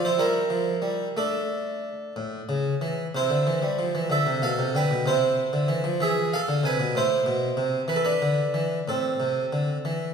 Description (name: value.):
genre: classical, baroque-style suite movement for harpsichord.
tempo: 62 BPM (dotted quarters).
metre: 6/8.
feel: rubato.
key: A minor from 3.1 s.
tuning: A4 = 439 Hz.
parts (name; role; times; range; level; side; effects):
harpsichord; solo; 0.0-10.1 s; A2 to G#5; -23 LUFS; right 1 dB; none.
room: wet recital hall reverb, RT60 1.6 s.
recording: heard from further back in the room.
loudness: -23 LUFS.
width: side -6 dB against mid.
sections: 0.0-10.1 A section.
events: none.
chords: 0.2 Edim; 1.2 D5/A; 2.2 A; 3.1 Cadd9; 4.1 D5; 5.1 Cadd9; 6.0 E; 7.0 Am; 7.9 E5; 8.9 Am.